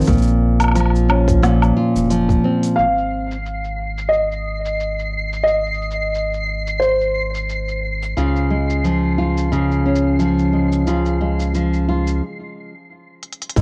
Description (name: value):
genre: folktronica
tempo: 89 BPM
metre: 4/4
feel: swing 56% on 16ths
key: Ab major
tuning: A4 = 438 Hz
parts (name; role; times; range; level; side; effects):
- nylon-string guitar; arpeggios; 0.0-3.4, 8.2-13.6 s; Ab2 to F4; -20 LUFS; equal; analog delay
- round analog bass; bass; 0.0-13.6 s; F1 to Db2; -24 LUFS; equal; none
- organic electronic drum kit; drums; 0.0-13.6 s; cabasa, hi-hat, snare drum, woodblock; -28 LUFS; equal; low-pass filter on hats, low-pass filter on snare, low-pass filter on perc
- electronic kick drum; drums; 0.1-2.4, 13.6 s; none; -19 LUFS; equal; none
- felt-muted upright piano; melody; 2.8-7.8 s; C5 to F5; -22 LUFS; equal; cassette tape, plate reverb, analog delay
- flickering grainy texture; texture; 3.1-12.2 s; C7; -31 LUFS; equal; built-in reverb
room: light reverb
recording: home recording on cassette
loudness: -18 LUFS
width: mono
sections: 0.0-2.8 A section; 2.8-13.6 B section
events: filter sweep on nylon-string guitar 0.0-2.8; break 12.2-13.6; drum fill 13.2-13.6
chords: 0.1 Bbmadd9; 2.8 Ab; 8.2 Db